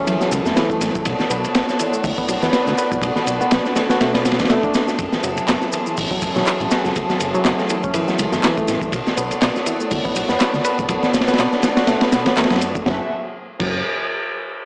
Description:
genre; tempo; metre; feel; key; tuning
breakbeat, breaks; 122 BPM; 4/4; swing 56% on 16ths; F# minor; A4 = 440 Hz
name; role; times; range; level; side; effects
dark symphonic string section; sustained chords; 0.0-13.1 s; F#3 to E5; -27 LUFS; equal; vintage 12-bit sampler grit, sidechain pumping
barky reed electric piano; riff; 0.0-13.8 s; E3 to B4; -25 LUFS; equal; overdrive, vintage 12-bit sampler grit, low-pass filter, analog delay
fat analog bass; bass; 0.1-13.8 s; F#1 to B2; -29 LUFS; equal; none
crunchy breakbeat drum kit; drums; 0.1-13.7 s; crash cymbal, hi-hat, kick drum, ride cymbal, snare drum; -22 LUFS; equal; none
electronic shaker and handclaps; drums; 0.1-12.8 s; none; -29 LUFS; equal; none
bongos and congas; percussion; 0.3-12.6 s; none; -37 LUFS; equal; none
room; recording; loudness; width
light reverb; dry, gritty hardware recording, small speaker sound; -19 LUFS; mono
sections
0.0-12.9 A section; 12.9-14.7 B section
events
filter sweep on analog synth bass 0.0-12.9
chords
0.0 F#m9; 1.1 Bm9; 5.0 F#m9; 8.9 Bm9; 12.9 F#m9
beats
0.07 0.56 | 1.06 1.55 2.04 2.53 | 3.02 3.52 4.01 4.50 | 4.99 5.48 5.97 6.47 | 6.96 7.45 7.94 8.43 | 8.93 9.42 9.91 10.40 | 10.89 11.38 11.88 12.37 | 12.86 13.35

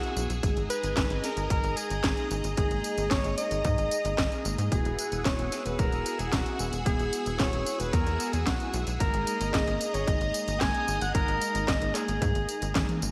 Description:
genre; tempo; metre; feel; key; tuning
italo disco; 112 BPM; 4/4; straight; G# minor; A4 = 437 Hz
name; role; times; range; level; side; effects
warm alto saxophone; melody; 0.0-13.0 s; F#4 to G#5; -34 LUFS; equal; delay
string machine, full ensemble; sustained chords; 0.0-13.1 s; G#4 to E6; -39 LUFS; equal; phaser, ensemble chorus
mellow synth brass; stabs; 0.0-13.1 s; G#3 to G#4; -39 LUFS; equal; chorus, cassette tape
house drum kit; drums; 0.0-13.1 s; handclaps, hi-hat, snare drum, tambourine, toms; -36 LUFS; equal; overdrive
tight sequencer bass; bass; 0.2-13.1 s; E1 to G#2; -34 LUFS; equal; none
electronic kick drum; drums; 0.4-12.9 s; none; -32 LUFS; equal; overdrive
room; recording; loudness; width
moderate lush hall reverb, RT60 1.8 s; bright 1980s-style digital production, vinyl crackle; -28 LUFS; mono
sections
0.0-13.1 A section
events
drum fill 12.8-13.1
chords
0.4 G#sus2; 4.7 Eadd9; 9.0 G#sus2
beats
| 0.43 0.97 1.50 2.04 | 2.58 3.11 3.65 4.18 | 4.72 5.25 5.79 6.33 | 6.86 7.40 7.93 8.47 | 9.00 9.54 10.07 10.61 | 11.15 11.68 12.22 12.75

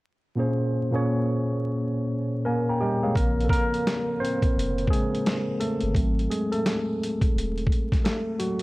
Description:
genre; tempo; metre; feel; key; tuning
lo-fi hip hop; 86 BPM; 4/4; swing 63% on 16ths; unclear; A4 = 445 Hz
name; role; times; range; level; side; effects
tine electric piano; accompaniment; 0.4-8.6 s; Bb2 to Bb5; -25 LUFS; equal; medium stereo tremolo, cassette tape, low-pass filter
soft dub sub bass; bass; 3.2-7.7 s; Eb1 to Bb1; -27 LUFS; equal; none
dusty soul sampler-style drum kit; drums; 3.2-8.6 s; hi-hat, kick drum, snare drum; -25 LUFS; equal; none
room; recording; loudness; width
light reverb; vinyl crackle; -23 LUFS; side -20 dB against mid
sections
0.4-3.2 A section; 3.2-8.6 B section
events
tine electric piano solo 3.2-8.6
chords
0.4 Bbm9; 5.9 Ab7b9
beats
| 0.36 1.06 1.76 2.46 | 3.15 3.85 4.55 5.25 | 5.95 6.64 7.34 8.04

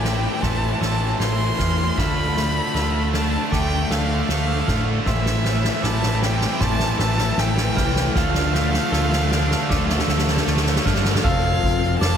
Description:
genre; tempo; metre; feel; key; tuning
post-rock; 78 BPM; 4/4; straight; unclear; A4 = 440 Hz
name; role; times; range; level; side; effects
clear violin; melody; 0.0-12.2 s; E5 to C6; -27 LUFS; equal; diffuse ambient delay
pedal steel guitar; sustained chords; 0.0-12.2 s; D3 to F5; -33 LUFS; right 2 dB; none
electric guitar at the edge of break-up; arpeggios; 0.0-11.2 s; A2 to F4; -31 LUFS; left 1 dB; analog chorus, diffuse ambient delay
glockenspiel with hard plastic mallets; arpeggios; 0.0-12.2 s; C6 to F6; -33 LUFS; right 6 dB; diffuse ambient delay
crunchy overdriven guitar; riff; 0.0-12.2 s; A2 to A4; -27 LUFS; left 9 dB; ensemble chorus
tight distorted guitar; riff; 0.0-11.3 s; A2 to A3; -29 LUFS; right 10 dB; distortion
overdriven picked electric bass; bass; 0.0-12.2 s; F1 to A2; -23 LUFS; equal; none
soft-mallet drum kit; drums; 0.0-12.2 s; kick drum, ride cymbal, snare drum; -24 LUFS; equal; none
room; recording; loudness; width
moderate lush hall reverb, RT60 2.2 s; dreamy mix soaked in reverb; -18 LUFS; side -8 dB against mid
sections
0.0-11.2 A section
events
build-up 0.0-11.2; drum fill 0.0-11.2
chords
0.0 Am; 2.0 Dm; 5.1 Am; 8.2 Dm; 11.2 Fmaj7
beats
0.42 1.20 | 1.97 2.74 3.52 4.29 | 5.07 5.84 6.61 7.38 | 8.16 8.93 9.70 10.47 | 11.24 12.02

